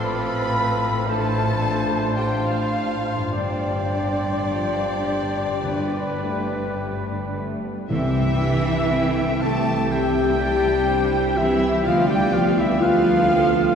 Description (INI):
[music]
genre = classical, slow romantic movement for symphony orchestra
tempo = 50-64 BPM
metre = 4/4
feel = rubato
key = C major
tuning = A4 = 440 Hz
[part]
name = warm studio violin section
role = melody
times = 0.0-13.8 s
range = D5 to B5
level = -31 LUFS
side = left 3 dB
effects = none
[part]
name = bright clarinet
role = second line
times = 0.0-13.8 s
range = F4 to G5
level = -34 LUFS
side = left 1 dB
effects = none
[part]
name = mellow hollow flute section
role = second line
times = 0.0-13.8 s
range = D5 to B5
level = -31 LUFS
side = equal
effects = none
[part]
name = rich studio violin section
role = second line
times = 0.0-13.8 s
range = D4 to A5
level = -34 LUFS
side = left 1 dB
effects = none
[part]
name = warm oboe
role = second line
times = 0.0-13.8 s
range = B4 to A5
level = -31 LUFS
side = right 1 dB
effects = none
[part]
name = warm bassoon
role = accompaniment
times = 0.0-7.3 s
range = C4 to G4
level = -33 LUFS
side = equal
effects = none
[part]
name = warm studio viola section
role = accompaniment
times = 0.0-13.8 s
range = B3 to B4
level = -29 LUFS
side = right 2 dB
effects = none
[part]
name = mellow French horn section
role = sustained chords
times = 0.0-13.8 s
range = F3 to A4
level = -24 LUFS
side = left 2 dB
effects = none
[part]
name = concert harp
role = arpeggios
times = 0.0-13.8 s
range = G2 to G5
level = -31 LUFS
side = left 1 dB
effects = none
[part]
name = warm trumpet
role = stabs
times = 0.0-7.5 s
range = A4 to C5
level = -33 LUFS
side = equal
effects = none
[part]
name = clear studio cello section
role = bass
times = 0.0-13.8 s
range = G2 to A3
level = -28 LUFS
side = right 1 dB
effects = none
[part]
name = rich studio double bass section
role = bass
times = 0.0-13.8 s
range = G1 to D2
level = -30 LUFS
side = right 1 dB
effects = none
[part]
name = timpani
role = percussion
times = 5.6-9.4 s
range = G2 to C3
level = -32 LUFS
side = equal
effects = none
[part]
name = dark tuba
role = bass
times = 7.9-13.8 s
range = C2 to D2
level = -29 LUFS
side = right 1 dB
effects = none
[sound]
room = wet cathedral reverb, RT60 6.4 s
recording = heard from further back in the room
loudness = -19 LUFS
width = side -7 dB against mid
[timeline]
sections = 0.0-7.9 A section; 7.9-13.8 B section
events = none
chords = 0.0 F/A; 1.1 Dm7/A; 3.3 Gsus4; 5.6 G; 7.9 C; 11.9 G7/D